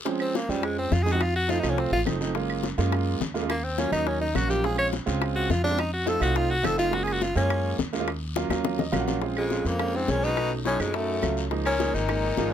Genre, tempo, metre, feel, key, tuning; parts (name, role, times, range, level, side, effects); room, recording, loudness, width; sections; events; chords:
Afro-Cuban jazz; 210 BPM; 4/4; straight; Bb minor; A4 = 440 Hz
clear baby grand piano; accompaniment; 0.1-12.5 s; F3 to Gb5; -29 LUFS; right 5 dB
bongos; percussion; 0.1-12.5 s; -31 LUFS; left 9 dB
guiro; percussion; 0.1-12.5 s; -40 LUFS; left 5 dB
edgy tenor saxophone; melody; 0.2-12.5 s; G3 to Db5; -27 LUFS; left 1 dB
claves; percussion; 0.2-12.2 s; -37 LUFS; right 5 dB
upright bass; bass; 0.5-12.5 s; Gb1 to Gb2; -29 LUFS; equal
breathy baritone saxophone; second line; 9.4-12.5 s; F2 to Cb3; -31 LUFS; left 7 dB
little or no reverb; close, detailed microphones; -23 LUFS; side -9 dB against mid
0.1-9.2 A section; 9.2-12.5 B section
tenor saxophone solo 0.1-9.2; drum fill 8.4-9.2; grand piano fill 8.6-9.2
0.1 Bbm9/F (rootless); 1.2 F7; 2.4 Gbmaj7; 3.5 Ebm9; 4.6 Bbm7; 5.8 F7; 6.9 Gbmaj7; 8.1 Ebm9; 9.2 Bbm9; 10.4 B9; 11.5 Db69